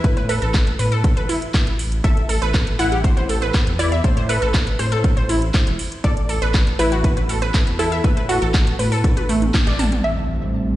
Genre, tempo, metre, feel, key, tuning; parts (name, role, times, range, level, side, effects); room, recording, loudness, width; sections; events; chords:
progressive house; 120 BPM; 4/4; straight; A dorian; A4 = 440 Hz
wide unison pluck; melody; 0.0-10.7 s; F#4 to F#5; -26 LUFS; right 1 dB; sidechain pumping, tape echo
wide unison pluck; arpeggios; 0.0-9.8 s; A3 to A5; -24 LUFS; equal; auto-pan, sidechain pumping, tape echo
dark detuned saw bass; bass; 0.0-10.8 s; E1 to A2; -22 LUFS; equal; sidechain pumping
electronic kick drum; drums; 0.0-9.6 s; -18 LUFS; equal
house drum kit; drums; 0.0-10.0 s; handclaps, hi-hat, rim click, toms; -26 LUFS; equal; low-pass filter on hats, low-pass filter on snare, low-pass filter on toms
warm analog pad; sustained chords; 10.0-10.8 s; G3 to C4; -25 LUFS; right 2 dB; wide subtle chorus, sidechain pumping
impact; sound effects; 10.0-10.8 s; -27 LUFS; equal
light reverb; played on a big sound system in a bare room, stone room reverb, nothing above 10.8 kHz; -16 LUFS; side -15 dB against mid
0.0-10.0 A section
drum fill 9.0-10.0; band accent 9.5; impact 10.0-10.8
0.0 B7(no3)/A; 2.0 Am; 6.0 B7(no3)/A; 10.0 Am7